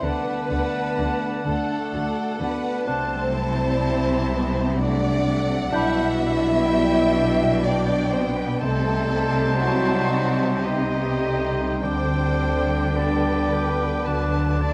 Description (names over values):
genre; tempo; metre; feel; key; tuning
classical, slow romantic movement for symphony orchestra; 49-65 BPM; 3/4; rubato; G major; A4 = 440 Hz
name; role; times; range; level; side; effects
rich chamber violin section; melody; 0.0-14.7 s; Eb5 to A5; -35 LUFS; equal; none
clear oboe; second line; 0.0-14.7 s; F#5 to A5; -35 LUFS; equal; none
rich chamber violin section; second line; 0.0-14.7 s; F#4 to E5; -31 LUFS; equal; none
silver concert flute; second line; 0.0-14.7 s; A5 to D6; -35 LUFS; equal; none
mellow bassoon; accompaniment; 0.0-14.7 s; D4 to Eb4; -34 LUFS; equal; none
rich studio viola section; accompaniment; 0.0-14.7 s; F#3 to E4; -33 LUFS; equal; none
mellow French horn section; sustained chords; 0.0-14.6 s; F#3 to E4; -30 LUFS; equal; none
concert harp; arpeggios; 0.0-14.7 s; B2 to Eb5; -35 LUFS; equal; none
rich chamber double bass section; bass; 0.0-14.7 s; B1 to D2; -29 LUFS; equal; none
warm chamber cello section; bass; 0.0-14.7 s; B2 to D4; -29 LUFS; equal; none
room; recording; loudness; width
moderate scoring stage reverb, RT60 1.5 s; dark, warm production, vinyl crackle; -22 LUFS; mono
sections
0.0-14.7 A section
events
none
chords
0.0 D; 2.9 D7/C; 5.7 G/B; 8.6 Am7b5/C; 11.8 G/D; 14.1 D